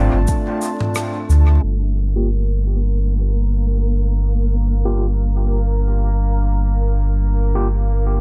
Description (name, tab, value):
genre	ambient dub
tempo	89 BPM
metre	4/4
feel	swing 57% on 16ths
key	G minor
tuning	A4 = 440 Hz
part	warbly tape-like pad	sustained chords	0.0-8.2 s	G3 to D5	-32 LUFS	equal	chorus, built-in reverb
part	warm sub bass	bass	0.0-8.2 s	G1 to D2	-18 LUFS	equal	tube saturation
part	bubbling stepped-filter texture	texture	0.0-8.2 s	A3 to A5	-31 LUFS	equal	chorus, built-in reverb
part	tight funk drum kit	drums	0.3-1.4 s	cabasa, rim click, toms	-28 LUFS	equal	low-pass filter on toms, studio ambience, low-pass filter on snare, low-pass filter on perc, low-pass filter on room, dub echo
part	overdriven tine electric piano	stabs	2.2-7.7 s	Bb3 to G4	-30 LUFS	equal	fast tremolo, low-pass filter, dub echo
room	small room ambience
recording	echo-heavy mix, vinyl crackle, low-pass filter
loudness	-18 LUFS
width	mono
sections	0.0-1.6 A section; 1.6-8.2 B section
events	filter sweep on ambient pad 1.6-8.2; filter sweep on tine electric piano 1.6-8.2; filter sweep 1.6-8.2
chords	0.0 Dm7; 1.6 Gm7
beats	0.28 0.96 | 1.63 2.30 2.98 3.65 | 4.33 5.00 5.67 6.35 | 7.02 7.70